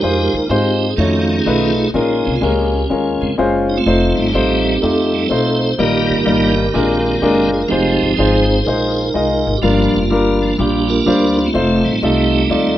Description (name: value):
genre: gospel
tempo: 125 BPM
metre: 4/4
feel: swing 66% on 8ths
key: unclear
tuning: A4 = 439 Hz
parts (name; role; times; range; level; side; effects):
- warm concert grand piano; accompaniment; 0.0-12.8 s; G2 to Eb5; -16 LUFS; left 2 dB; none
- tonewheel organ; sustained chords; 0.0-12.8 s; Db3 to C5; -17 LUFS; right 2 dB; slow rotary speaker, overdrive, chorus vibrato
- upright bass; bass; 0.0-12.8 s; F1 to Ab2; -21 LUFS; equal; none
room: light reverb, small room ambience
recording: rough home demo mix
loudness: -13 LUFS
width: side -13 dB against mid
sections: 0.0-12.8 A section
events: tonewheel organ solo 0.0-12.8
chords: 0.0 Fm7; 1.0 F7alt; 1.9 Bbm7; 3.9 F7; 5.8 Eb; 6.7 Bb7; 7.7 Fm7; 9.6 Gm7; 11.5 F7